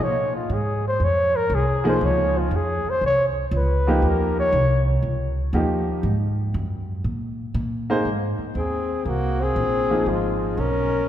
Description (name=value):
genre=jazz, small-group swing and bop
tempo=119 BPM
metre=4/4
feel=swing 68% on 8ths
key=Ab major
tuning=A4 = 440 Hz
part: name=breathy flugelhorn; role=melody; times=0.0-4.9, 8.6-11.1 s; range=F4 to Db5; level=-23 LUFS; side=left 1 dB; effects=none
part: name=upright bass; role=bass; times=0.0-11.1 s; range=Ab1 to Bb2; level=-24 LUFS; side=equal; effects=none
part: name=warm baby grand piano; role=accompaniment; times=1.8-10.5 s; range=F3 to C5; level=-25 LUFS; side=equal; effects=none
part: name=breathy tenor saxophone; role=second line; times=8.6-11.1 s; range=Ab3 to Db4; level=-25 LUFS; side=left 2 dB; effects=none
room=wet church reverb, RT60 2.8 s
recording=recorded in a church or concert hall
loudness=-20 LUFS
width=side -11 dB against mid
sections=0.0-8.1 A section; 8.1-11.1 B section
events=flugelhorn solo 0.0-8.1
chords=0.0 Bbm7; 4.0 Eb9; 6.0 Ab7sus2; 8.1 Abadd9; 10.1 Db9